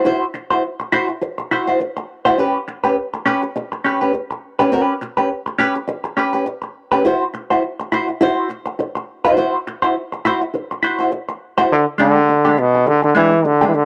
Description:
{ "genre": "funk", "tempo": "103 BPM", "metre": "4/4", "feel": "swing 56% on 16ths", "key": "unclear", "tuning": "A4 = 440 Hz", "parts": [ { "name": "vintage hollow-body jazz guitar", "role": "accompaniment", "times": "0.0-13.8 s", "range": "G#3 to C5", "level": "-19 LUFS", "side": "equal", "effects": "wah" }, { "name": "bright trombone", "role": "melody", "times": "11.7-13.8 s", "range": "B2 to E3", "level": "-15 LUFS", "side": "equal", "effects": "none" } ], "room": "studio ambience", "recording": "dry, close 1970s-style studio recording", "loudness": "-18 LUFS", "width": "mono", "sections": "0.0-11.7 A section; 11.7-13.8 B section", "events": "none", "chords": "0.0 Esus2; 2.4 G; 7.0 Esus2; 11.7 E7#9 (rootless)" }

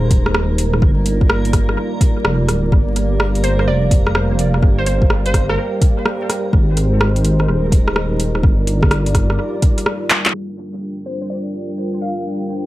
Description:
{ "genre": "future garage", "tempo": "126 BPM", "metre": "4/4", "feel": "swing 65% on 16ths", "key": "G phrygian", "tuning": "A4 = 440 Hz", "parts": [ { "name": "dark analog pad", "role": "sustained chords", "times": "0.0-12.7 s", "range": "G3 to G5", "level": "-23 LUFS", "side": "equal", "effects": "chorus, sidechain pumping" }, { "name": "dark detuned saw bass", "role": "bass", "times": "0.0-9.4 s", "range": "D1 to Ab1", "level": "-17 LUFS", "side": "equal", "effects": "tube saturation, sidechain pumping" }, { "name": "backwards swelling texture", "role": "texture", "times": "0.0-10.4 s", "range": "Bb3 to Bb4", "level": "-29 LUFS", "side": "right 3 dB", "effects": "built-in reverb" }, { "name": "deep house drum kit", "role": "drums", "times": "0.1-10.3 s", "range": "handclaps, hi-hat, rim click", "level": "-20 LUFS", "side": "equal", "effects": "analog delay" }, { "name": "electronic kick drum", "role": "drums", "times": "0.1-9.8 s", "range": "none", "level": "-14 LUFS", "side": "equal", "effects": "none" }, { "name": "glassy wavetable pluck", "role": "melody", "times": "3.4-5.8, 11.1-12.3 s", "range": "Bb4 to F5", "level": "-25 LUFS", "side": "right 2 dB", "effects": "chorus, dub echo" } ], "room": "little or no reverb", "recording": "echo-heavy mix, vinyl crackle, low-pass filter", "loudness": "-14 LUFS", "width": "side -16 dB against mid", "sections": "0.0-10.3 A section; 10.3-12.7 B section", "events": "drum fill 10.1; filter sweep 10.3-12.7", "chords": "0.0 Abmaj9; 0.8 Ebmaj7/G; 2.7 Gm7; 6.5 Abmaj9; 8.4 Ebmaj7/G; 10.3 Gm7" }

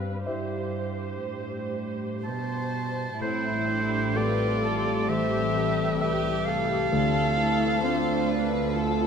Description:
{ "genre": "cinematic, emotional film score for orchestra", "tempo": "59-66 BPM", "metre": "4/4", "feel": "rubato", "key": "A minor", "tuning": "A4 = 436 Hz", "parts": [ { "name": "dark symphonic viola section", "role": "accompaniment", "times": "0.0-9.1 s", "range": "E3 to C5", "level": "-34 LUFS", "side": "right 2 dB", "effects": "none" }, { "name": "warm grand piano", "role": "accompaniment", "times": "0.0-9.1 s", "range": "D2 to F5", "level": "-34 LUFS", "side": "left 2 dB", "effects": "none" }, { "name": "concert harp", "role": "arpeggios", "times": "0.0-9.1 s", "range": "G2 to B5", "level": "-33 LUFS", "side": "left 9 dB", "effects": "none" }, { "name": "warm studio cello section", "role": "bass", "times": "0.0-9.1 s", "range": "C2 to B2", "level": "-32 LUFS", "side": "right 4 dB", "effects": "none" }, { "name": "clear oboe", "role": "second line", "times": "2.2-9.1 s", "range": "C5 to A5", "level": "-29 LUFS", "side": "right 3 dB", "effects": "none" }, { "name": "warm symphonic violin section", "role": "second line", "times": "2.2-9.1 s", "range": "E4 to C5", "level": "-35 LUFS", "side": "left 2 dB", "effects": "none" }, { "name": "warm symphonic violin section", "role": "melody", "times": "3.2-9.1 s", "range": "E4 to C5", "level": "-34 LUFS", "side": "left 5 dB", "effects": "none" }, { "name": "warm French horn section", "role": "sustained chords", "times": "3.2-9.1 s", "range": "D3 to A4", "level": "-34 LUFS", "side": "left 5 dB", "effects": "none" }, { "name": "rich symphonic double bass section", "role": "bass", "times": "3.2-9.1 s", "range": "A1 to D2", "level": "-33 LUFS", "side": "right 7 dB", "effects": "none" } ], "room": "moderate scoring stage reverb, RT60 2.0 s", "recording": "minimal, uncompressed stereo recording", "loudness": "-24 LUFS", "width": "side -6 dB against mid", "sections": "0.0-3.2 A section; 3.2-9.1 A section", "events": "none", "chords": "0.0 Cmaj7/G; 3.2 Am7; 6.9 Dm7" }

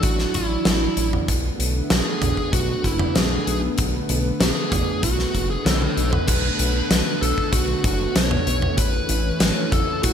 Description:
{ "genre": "synthwave", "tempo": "96 BPM", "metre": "4/4", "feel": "straight", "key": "unclear", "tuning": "A4 = 438 Hz", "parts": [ { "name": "bluesy overdriven lead guitar", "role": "melody", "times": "0.0-10.1 s", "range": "E4 to C#5", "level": "-26 LUFS", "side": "equal", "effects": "distortion, ping-pong delay" }, { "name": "lush unison pad", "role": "sustained chords", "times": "0.0-10.1 s", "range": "D3 to D4", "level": "-27 LUFS", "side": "equal", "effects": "chorus, sidechain pumping" }, { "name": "chorused synth bass", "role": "bass", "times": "0.0-10.1 s", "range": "F#1 to B1", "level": "-24 LUFS", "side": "equal", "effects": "tube saturation" }, { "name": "big rock drum kit", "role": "drums", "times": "0.0-10.1 s", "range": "crash cymbal, hi-hat, snare drum, toms", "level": "-23 LUFS", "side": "equal", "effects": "gated reverb" }, { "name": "kick drum", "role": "drums", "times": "0.0-10.1 s", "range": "none", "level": "-26 LUFS", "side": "equal", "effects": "none" } ], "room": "light reverb, small room ambience", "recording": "bright 1980s-style digital production", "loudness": "-18 LUFS", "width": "side -8 dB against mid", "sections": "0.0-6.3 A section; 6.3-10.1 B section", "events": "drum fill 5.7-6.3", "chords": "0.0 Dadd9/A; 1.3 Bm7; 8.8 A" }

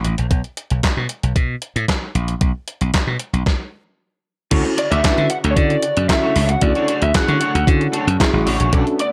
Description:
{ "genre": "early-eighties boogie funk", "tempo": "114 BPM", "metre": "4/4", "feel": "straight", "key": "unclear", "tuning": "A4 = 440 Hz", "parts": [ { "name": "slap bass", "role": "bass", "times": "0.0-8.8 s", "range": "A1 to D3", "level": "-21 LUFS", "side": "equal", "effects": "none" }, { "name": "clean 12-bit digital drum machine", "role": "drums", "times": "0.0-9.1 s", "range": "crash cymbal, handclaps, hi-hat, kick drum, snare drum", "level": "-21 LUFS", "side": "equal", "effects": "gated reverb" }, { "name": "mellow tine electric piano", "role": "accompaniment", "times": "4.5-9.0 s", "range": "C#4 to A5", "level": "-25 LUFS", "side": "equal", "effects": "none" }, { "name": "brassy analog pad", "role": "sustained chords", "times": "4.5-9.1 s", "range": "C#3 to F#4", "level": "-32 LUFS", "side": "equal", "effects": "chorus" }, { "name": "electric guitar at the edge of break-up", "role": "riff", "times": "4.5-9.0 s", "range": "A3 to D5", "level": "-27 LUFS", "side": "equal", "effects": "ensemble chorus" }, { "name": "lead guitar through a small cranked amp", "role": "melody", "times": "4.8-9.1 s", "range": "C#5 to F#5", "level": "-22 LUFS", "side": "equal", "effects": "overdrive, slapback echo" } ], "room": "light reverb", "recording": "none", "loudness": "-18 LUFS", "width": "mono", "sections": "0.0-4.5 A section; 4.5-9.1 B section", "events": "stop 3.5-4.5; tine electric piano fill 7.7-8.7", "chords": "0.3 N.C.; 4.5 Dmaj7" }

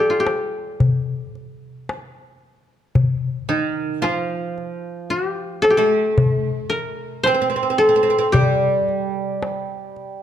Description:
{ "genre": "Turkish makam ensemble", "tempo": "112 BPM (eighths)", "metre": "10/8", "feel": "straight", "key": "G makam ussak", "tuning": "A4 = 440 Hz", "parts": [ { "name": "koto", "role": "melody", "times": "0.0-10.2 s", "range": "Eb4 to C5", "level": "-19 LUFS", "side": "left 1 dB", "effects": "none" }, { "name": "darbuka", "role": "percussion", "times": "0.3-10.1 s", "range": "none", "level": "-20 LUFS", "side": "left 2 dB", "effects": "none" }, { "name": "oud", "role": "second line", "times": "3.5-10.2 s", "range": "Eb3 to C4", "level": "-24 LUFS", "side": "right 4 dB", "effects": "none" } ], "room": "moderate recital hall reverb, RT60 1.6 s", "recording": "dark, warm production", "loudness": "-17 LUFS", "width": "side -10 dB against mid", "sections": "0.0-10.2 A section", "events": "none", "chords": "none" }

